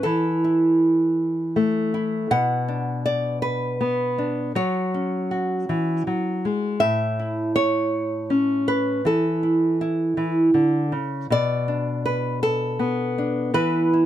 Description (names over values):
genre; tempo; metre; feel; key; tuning
folk, solo fingerstyle acoustic guitar; 53 BPM (dotted quarters); 6/8; straight; unclear; A4 = 440 Hz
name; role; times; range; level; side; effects
nylon-string guitar; solo; 0.0-14.1 s; A2 to F#5; -20 LUFS; equal; none
room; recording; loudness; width
light reverb; close, detailed microphones; -20 LUFS; side -11 dB against mid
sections
0.0-14.1 A section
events
none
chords
0.1 Esus4; 2.3 Bm; 4.6 F#5; 6.8 A; 9.0 Esus4; 11.3 Bm7; 13.5 E5